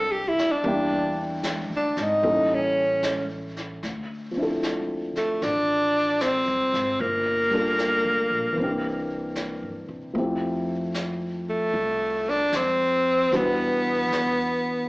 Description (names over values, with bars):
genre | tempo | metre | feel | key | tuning
jazz ballad | 76 BPM | 4/4 | swing 67% on 8ths | D minor from 3.8 s | A4 = 440 Hz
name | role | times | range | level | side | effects
clear tenor saxophone | melody | 0.0-14.9 s | A3 to A4 | -22 LUFS | equal | none
dark baby grand piano | accompaniment | 0.0-14.9 s | E3 to A4 | -29 LUFS | equal | slapback echo
upright bass | bass | 0.0-14.9 s | G1 to C3 | -36 LUFS | equal | none
jazz brush drum kit | drums | 0.4-14.9 s | brushed snare drum, hi-hat, snare drum | -35 LUFS | equal | slapback echo
room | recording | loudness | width
moderate club reverb, RT60 0.7 s | live gig heard through the venue's PA, club reverb, AM radio sound | -22 LUFS | side -23 dB against mid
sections
0.0-3.8 A section; 3.8-14.9 B section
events
tenor saxophone solo 0.0-3.8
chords
0.0 Fmaj9; 0.6 Em7b5; 2.2 A7b9; 3.8 Dm9; 7.0 Gm7; 8.6 C9; 10.1 Fmaj7; 13.3 Em7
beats
| 0.64 1.44 2.23 3.03 | 3.83 4.62 5.41 6.21 | 7.00 7.78 8.57 9.35 | 10.14 10.93 11.72 12.52 | 13.31 14.11